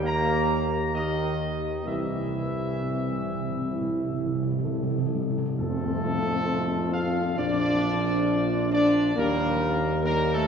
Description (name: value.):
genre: classical, ceremonial fanfare.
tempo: 66 BPM.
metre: 4/4.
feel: straight.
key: F mixolydian from 5.6 s.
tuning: A4 = 440 Hz.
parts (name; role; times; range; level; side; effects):
mellow trumpet section; melody; 0.0-10.5 s; A4 to Bb5; -30 LUFS; equal; none.
mellow trombone section; sustained chords; 0.0-10.5 s; Eb3 to F4; -33 LUFS; right 2 dB; none.
warm French horn section; sustained chords; 0.0-10.5 s; A3 to A4; -29 LUFS; left 1 dB; none.
mellow tuba; bass; 0.0-10.5 s; Bb1 to F2; -28 LUFS; right 1 dB; none.
timpani; percussion; 1.9-6.9 s; F2 to C3; -30 LUFS; right 2 dB; none.
tam-tam; percussion; 5.6-9.1 s; none; -37 LUFS; left 2 dB; none.
room: wet church reverb, RT60 2.9 s.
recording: heard from further back in the room.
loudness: -23 LUFS.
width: side -6 dB against mid.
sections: 0.0-5.6 A section; 5.6-10.5 B section.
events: timpani fill 1.9-5.6; band accent 5.6-6.5.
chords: 0.0 Eb; 1.9 C; 5.6 F; 7.4 Bb; 9.2 Eb.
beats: 0.03 0.94 | 1.86 2.79 3.72 4.64 | 5.58 6.48 7.37 8.26 | 9.16 10.05.